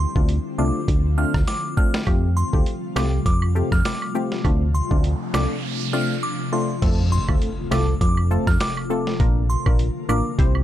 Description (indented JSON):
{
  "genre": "dancehall",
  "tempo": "101 BPM",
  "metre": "4/4",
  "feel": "swing 56% on 16ths",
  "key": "D minor",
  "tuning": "A4 = 441 Hz",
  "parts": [
    { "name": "glassy synth bell", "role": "melody", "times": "0.0-10.2 s", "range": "C6 to F6", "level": "-30 LUFS", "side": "right 1 dB", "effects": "chorus" },
    { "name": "ethereal airy pad", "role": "sustained chords", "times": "0.0-10.6 s", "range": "C3 to Bb4", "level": "-29 LUFS", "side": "left 2 dB", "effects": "ensemble chorus, built-in reverb, sidechain pumping" },
    { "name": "solid FM bass", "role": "bass", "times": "0.0-10.6 s", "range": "A1 to F2", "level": "-20 LUFS", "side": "equal", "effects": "none" },
    { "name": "wavetable chord stab", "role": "accompaniment", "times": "0.2-10.6 s", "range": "A3 to C5", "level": "-26 LUFS", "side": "left 2 dB", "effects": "sidechain pumping" },
    { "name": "boom bap sampler-style drum kit", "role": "drums", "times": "0.2-10.5 s", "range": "crash cymbal, finger snaps, hi-hat, kick drum, rim click, snare drum", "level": "-21 LUFS", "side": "equal", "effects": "none" },
    { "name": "woodblock and cabasa", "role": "percussion", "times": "2.1-10.6 s", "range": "none", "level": "-32 LUFS", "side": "right 9 dB", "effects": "none" },
    { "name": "noise sweep and impact", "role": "sound effects", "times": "5.0-9.2 s", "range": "none", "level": "-32 LUFS", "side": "right 1 dB", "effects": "none" }
  ],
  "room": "little or no reverb",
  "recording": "dark, warm production",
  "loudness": "-19 LUFS",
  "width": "side -12 dB against mid",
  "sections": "0.0-6.8 A section; 6.8-10.6 B section",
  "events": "noise sweep 5.0-6.8; break 5.6-6.8; impact 6.8-9.2",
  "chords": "0.0 Dm7; 2.1 Fadd9; 4.4 Dm7; 9.2 Bb"
}